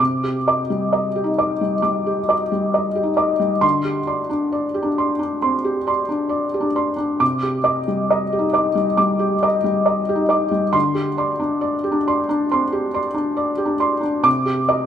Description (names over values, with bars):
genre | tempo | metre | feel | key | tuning
neoclassical minimalist piano | 68 BPM | 4/4 | rubato | C minor | A4 = 440 Hz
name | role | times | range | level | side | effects
felt-muted upright piano | solo | 0.0-14.9 s | C3 to D6 | -17 LUFS | equal | none
room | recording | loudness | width
moderate stone room reverb, RT60 1.3 s | band playing live in one room | -17 LUFS | side -9 dB against mid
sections
0.0-14.9 A section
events
none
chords
0.0 Cmadd9; 3.6 Gsus4/D; 7.2 Cmadd9; 10.7 Gsus4/D; 14.3 Cmadd9